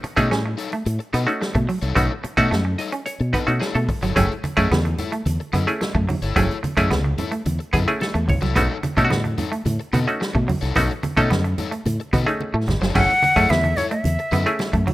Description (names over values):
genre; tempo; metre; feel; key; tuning
funk; 109 BPM; 4/4; straight; F# dorian; A4 = 441 Hz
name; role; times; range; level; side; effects
crunchy overdriven guitar; accompaniment; 0.0-14.8 s; D#4 to D#5; -31 LUFS; left 6 dB; none
electric guitar at the edge of break-up; riff; 0.0-14.9 s; F#3 to C#4; -27 LUFS; right 2 dB; none
fingered electric bass with an envelope filter; bass; 0.0-14.8 s; F#1 to B2; -22 LUFS; equal; none
swinging big-band drum kit; drums; 0.0-14.9 s; crash cymbal, hi-hat, kick drum, snare drum; -27 LUFS; equal; none
muted clav; stabs; 0.2-14.7 s; A3 to D#5; -23 LUFS; right 1 dB; none
congas; percussion; 4.2-14.9 s; none; -27 LUFS; right 2 dB; none
breathy bright concert flute; melody; 13.0-14.8 s; C#5 to F#5; -19 LUFS; left 1 dB; none
room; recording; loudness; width
small room ambience; rough home demo mix; -18 LUFS; side -17 dB against mid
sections
0.0-13.0 A section; 13.0-14.9 B section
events
clav fill 2.5-4.2, 7.5-8.6; drum fill 12.4-13.0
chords
0.0 B9; 4.2 F#m7; 8.6 B9; 13.0 F#m7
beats
0.31 0.86 1.41 | 1.96 2.51 3.06 3.61 | 4.16 4.71 5.26 5.81 | 6.36 6.91 7.46 8.01 | 8.56 9.11 9.66 10.21 | 10.76 11.31 11.86 12.40 | 12.95 13.50 14.05 14.60